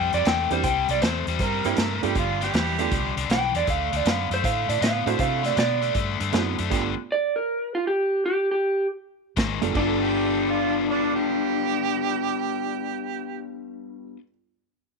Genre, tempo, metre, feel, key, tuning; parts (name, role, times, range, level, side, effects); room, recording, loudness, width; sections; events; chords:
electric blues shuffle; 158 BPM; 4/4; swing 66% on 8ths; G mixolydian; A4 = 439 Hz
electric guitar through a small old amp; melody; 0.0-14.2 s; D4 to G5; -24 LUFS; equal
biting overdriven guitar; riff; 0.0-6.9, 9.4-14.2 s; G2 to A4; -28 LUFS; left 12 dB
vintage muted fingered electric bass; bass; 0.0-6.9, 9.4-14.1 s; F#1 to C3; -30 LUFS; right 1 dB
vintage drum kit; drums; 0.1-6.8, 9.4-9.9 s; crash cymbal, hi-hat, kick drum, snare drum; -27 LUFS; right 1 dB
warm upright piano; accompaniment; 0.5-6.9, 9.6-14.3 s; G2 to A4; -30 LUFS; right 16 dB
mellow harmonica; second line; 1.4-3.2, 10.0-13.6 s; D4 to Bb4; -28 LUFS; right 15 dB; overdrive
studio ambience; 1960s-style stereo with parts hard left and right; -22 LUFS; side -4 dB against mid
0.0-9.7 A section; 9.7-12.8 B section
0.0 C7; 2.2 G; 3.7 D7; 6.7 G9; 9.4 Ab5; 9.7 G9